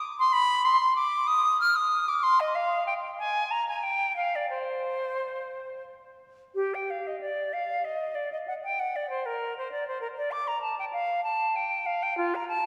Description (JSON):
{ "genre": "classical, baroque-style fantasia for unaccompanied flute", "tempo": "83-100 BPM", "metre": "3/4", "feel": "rubato", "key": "C minor, G minor from 6.6 s", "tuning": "A4 = 440 Hz", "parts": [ { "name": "silver concert flute", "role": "solo", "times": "0.2-12.7 s", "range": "F4 to F6", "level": "-28 LUFS", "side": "equal", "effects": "none" } ], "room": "wet church reverb, RT60 3.2 s", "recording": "none", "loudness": "-28 LUFS", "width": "mono", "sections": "0.0-6.6 A section; 6.6-12.7 A section", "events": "none", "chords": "none", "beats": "0.04 | 0.67 1.29 1.92 | 2.55 3.19 3.84 | 4.51 5.19 5.86 | 6.56 7.22 7.85 | 8.47 9.10 9.72 | 10.32 10.94 11.55 | 12.17" }